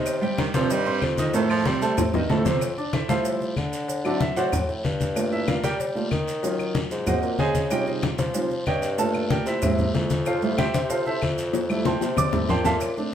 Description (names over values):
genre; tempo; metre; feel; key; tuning
Afro-Cuban jazz; 188 BPM; 4/4; straight; F major; A4 = 440 Hz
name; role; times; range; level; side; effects
warm baby grand piano; accompaniment; 0.0-13.1 s; A2 to D6; -25 LUFS; right 2 dB; none
mellow bassoon; bass; 0.0-13.0 s; F2 to G3; -28 LUFS; left 1 dB; none
claves; percussion; 0.1-13.0 s; none; -40 LUFS; left 4 dB; none
congas; percussion; 0.1-13.1 s; none; -27 LUFS; left 2 dB; none
cowbell and bongos; percussion; 0.1-13.0 s; none; -32 LUFS; left 4 dB; none
guiro; percussion; 0.1-13.1 s; none; -38 LUFS; left 3 dB; none
maracas; percussion; 0.1-13.1 s; none; -40 LUFS; right 5 dB; none
clear baritone saxophone; second line; 0.4-2.0 s; Eb3 to G3; -28 LUFS; right 4 dB; none
room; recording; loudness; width
wet studio reverb, RT60 0.8 s; heard from further back in the room; -21 LUFS; side -9 dB against mid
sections
0.0-2.6 A section; 2.6-12.8 A section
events
baritone saxophone solo 0.0-2.6; drum fill 2.0-2.6, 11.5-12.8; grand piano solo 2.6-13.1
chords
0.1 Cm; 1.3 F9; 2.6 Fmaj9; 3.9 D7; 5.2 Gm9; 6.4 Ebm7; 7.1 Ab9; 7.7 Dbmaj9#11; 9.0 Gm7; 9.6 Caug7; 10.3 Fmaj9